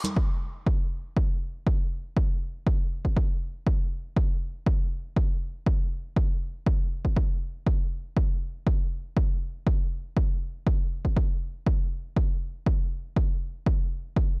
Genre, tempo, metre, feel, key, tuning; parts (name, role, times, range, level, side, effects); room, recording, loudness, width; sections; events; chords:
house; 120 BPM; 4/4; straight
electronic kick drum; drums; 0.2-14.3 s; -24 LUFS; equal; studio reverb
digital ambience; dry, gritty hardware recording; -25 LUFS; side -38 dB against mid
0.2-14.4 A section
break 0.0